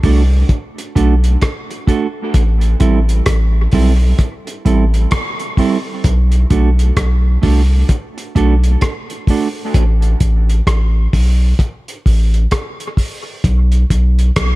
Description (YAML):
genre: dub reggae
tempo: 65 BPM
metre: 4/4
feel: swing 62% on 16ths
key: unclear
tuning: A4 = 440 Hz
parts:
  - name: mellow electric guitar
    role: accompaniment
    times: 0.0-9.5 s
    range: G3 to A4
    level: -20 LUFS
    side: right 5 dB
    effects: spring reverb, dub echo
  - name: soft dub sub bass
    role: bass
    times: 0.0-14.6 s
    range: A1 to C2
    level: -12 LUFS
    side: equal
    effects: none
  - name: cloth-damped thuddy drum kit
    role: drums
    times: 0.0-14.6 s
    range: hi-hat, kick drum, rim click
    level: -17 LUFS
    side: equal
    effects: none
room: studio reverb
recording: echo-heavy mix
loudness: -12 LUFS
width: side -19 dB against mid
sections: 0.0-14.6 A section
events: none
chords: 0.0 Bm7; 2.3 Am7; 6.0 Bm7; 9.7 N.C.